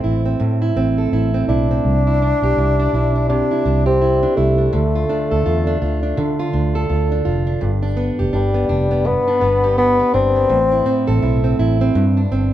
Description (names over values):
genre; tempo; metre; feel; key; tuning
acoustic pop; 83 BPM; 4/4; swing 60% on 16ths; C major; A4 = 440 Hz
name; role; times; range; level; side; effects
fingerpicked plugged-in steel-string acoustic guitar; accompaniment; 0.0-12.5 s; G2 to A4; -20 LUFS; right 2 dB; none
vintage muted fingered electric bass; bass; 0.0-12.5 s; F1 to D3; -19 LUFS; equal; none
mellow bassoon; melody; 1.5-11.2 s; G3 to D4; -19 LUFS; left 2 dB; tape echo
room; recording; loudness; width
moderate large studio reverb, RT60 0.9 s; band playing live in one room; -15 LUFS; side -12 dB against mid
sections
0.0-12.5 A section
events
none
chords
0.0 Am; 1.8 Cadd9; 4.7 Dm; 7.6 G; 10.5 Am; 12.0 Gsus4